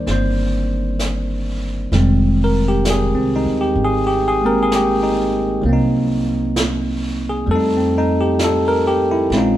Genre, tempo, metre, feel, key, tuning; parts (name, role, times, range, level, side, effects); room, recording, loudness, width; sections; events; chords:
jazz ballad; 65 BPM; 4/4; swing 68% on 8ths; F minor; A4 = 440 Hz
bell-like tine electric piano; accompaniment; 0.0-9.6 s; Eb3 to D5; -17 LUFS; equal
upright bass; bass; 0.0-9.6 s; F1 to F2; -21 LUFS; equal
vintage brush drum kit; drums; 0.1-9.6 s; brushed snare drum, hi-hat, snare drum; -27 LUFS; right 1 dB
light reverb; band playing live in one room; -15 LUFS; side -13 dB against mid
0.0-1.9 A section; 1.9-9.6 B section
0.0 Cm9; 1.9 Fm9; 5.6 Cm7b5; 7.5 F7